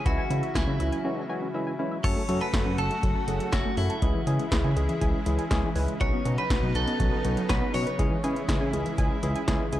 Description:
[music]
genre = synth-pop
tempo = 121 BPM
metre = 4/4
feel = straight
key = F# dorian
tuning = A4 = 440 Hz
[part]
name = clean electric guitar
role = melody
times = 0.0-8.7 s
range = E4 to C#5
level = -32 LUFS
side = right 1 dB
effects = wide subtle chorus
[part]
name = lush unison pad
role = sustained chords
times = 0.0-9.8 s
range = C#3 to F#4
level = -34 LUFS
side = equal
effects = chorus
[part]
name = barky tine electric piano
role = accompaniment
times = 0.1-9.8 s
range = E3 to B4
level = -32 LUFS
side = left 2 dB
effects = none
[part]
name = warbly dusty pluck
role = arpeggios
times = 0.1-9.8 s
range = E3 to A5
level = -34 LUFS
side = right 1 dB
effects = chorus, analog delay
[part]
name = smooth synth bass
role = bass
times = 0.1-9.8 s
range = F#1 to C#3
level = -28 LUFS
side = equal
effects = none
[part]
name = electro analog drum machine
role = drums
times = 0.1-9.8 s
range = crash cymbal, hi-hat, kick drum, snare drum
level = -28 LUFS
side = equal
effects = overdrive
[sound]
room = digital ambience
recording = dry, gritty hardware recording, cassette tape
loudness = -24 LUFS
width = side -13 dB against mid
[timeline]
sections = 0.0-2.0 A section; 2.0-9.8 B section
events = break 1.0-2.0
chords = 0.0 C#m; 2.0 F#m; 4.0 C#m; 6.0 Badd9; 8.0 C#m

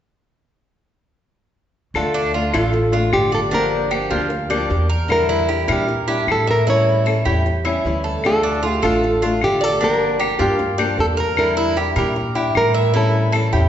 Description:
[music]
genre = latin, Cuban son and guajira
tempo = 153 BPM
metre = 4/4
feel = straight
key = D harmonic minor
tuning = A4 = 440 Hz
[part]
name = nylon-string guitar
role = accompaniment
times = 1.9-13.7 s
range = D3 to G4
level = -22 LUFS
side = left 2 dB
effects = none
[part]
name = upright bass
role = bass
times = 1.9-13.7 s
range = G1 to Bb2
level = -22 LUFS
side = equal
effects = none
[part]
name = claves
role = percussion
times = 1.9-13.5 s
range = none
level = -28 LUFS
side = left 5 dB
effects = none
[part]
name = nylon-string guitar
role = melody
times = 2.0-13.7 s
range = F4 to C#5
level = -20 LUFS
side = equal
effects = none
[part]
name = Cuban tres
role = arpeggios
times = 2.1-13.7 s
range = D4 to E5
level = -23 LUFS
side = right 3 dB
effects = none
[sound]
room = wet recital hall reverb, RT60 1.7 s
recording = recorded in a church or concert hall, nothing above 7.8 kHz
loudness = -16 LUFS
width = side -10 dB against mid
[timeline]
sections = 2.0-13.7 A section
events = none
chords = 2.0 Dm; 3.5 Gm7; 5.1 Em7b5; 6.7 A7; 8.2 Dm; 9.8 Gm7; 11.4 Em7b5; 12.9 A7

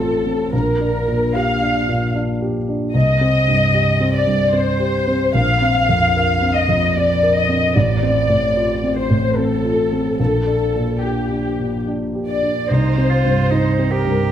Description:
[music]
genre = neoclassical piano and strings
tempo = 74 BPM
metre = 3/4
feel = rubato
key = C dorian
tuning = A4 = 442 Hz
[part]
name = dark studio violin section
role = melody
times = 0.0-14.3 s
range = G4 to F5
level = -18 LUFS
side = left 2 dB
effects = none
[part]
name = dark concert grand piano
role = accompaniment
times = 0.0-14.3 s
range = A1 to Bb4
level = -18 LUFS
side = right 1 dB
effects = none
[part]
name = warm cello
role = second line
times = 12.7-14.3 s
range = Eb4 to G4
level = -22 LUFS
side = right 6 dB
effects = none
[sound]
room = moderate recital hall reverb, RT60 1.4 s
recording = none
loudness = -15 LUFS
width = side -10 dB against mid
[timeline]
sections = 0.0-12.7 A section; 12.7-14.3 A section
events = none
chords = 0.0 F/A; 0.5 Gm/Bb; 2.9 Cm; 5.4 Bbsus2; 7.8 F/A; 10.2 Gm/Bb; 12.7 Cm

